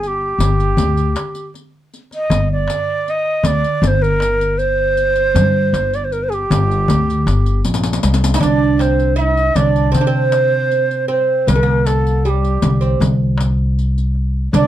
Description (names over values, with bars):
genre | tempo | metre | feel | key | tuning
Arabic maqam ensemble | 78 BPM | 4/4 | straight | G minor, C maqam rast from 8.4 s | A4 = 440 Hz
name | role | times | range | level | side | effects
breathy ney | melody | 0.0-14.7 s | G4 to F5-49c | -18 LUFS | right 1 dB | none
upright bass | bass | 0.0-14.7 s | G1 to C3 | -17 LUFS | left 1 dB | none
darbuka | percussion | 0.0-14.7 s | none | -21 LUFS | left 1 dB | none
riq | percussion | 0.0-14.7 s | none | -25 LUFS | left 4 dB | none
oud | second line | 8.3-14.7 s | G3 to E4-50c | -20 LUFS | right 6 dB | none
room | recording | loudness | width
light reverb | dark, warm production | -13 LUFS | side -12 dB against mid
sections
0.0-8.4 A section; 8.4-14.7 B section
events
drum fill 7.7-8.4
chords
none